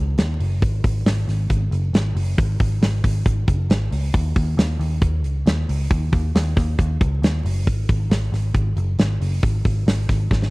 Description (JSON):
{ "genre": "jangly indie pop", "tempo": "136 BPM", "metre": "4/4", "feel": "straight", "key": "unclear", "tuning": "A4 = 440 Hz", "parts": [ { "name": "vintage muted picked electric bass", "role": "bass", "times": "0.0-10.5 s", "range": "F#1 to D#2", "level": "-20 LUFS", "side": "equal", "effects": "none" }, { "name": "big rock drum kit", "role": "drums", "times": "0.2-10.5 s", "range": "hi-hat, kick drum, snare drum", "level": "-21 LUFS", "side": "equal", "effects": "none" } ], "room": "little or no reverb", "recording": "dry, close 1970s-style studio recording, vinyl crackle", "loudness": "-18 LUFS", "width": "side -24 dB against mid", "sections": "0.0-10.5 A section", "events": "drum fill 10.3", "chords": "none" }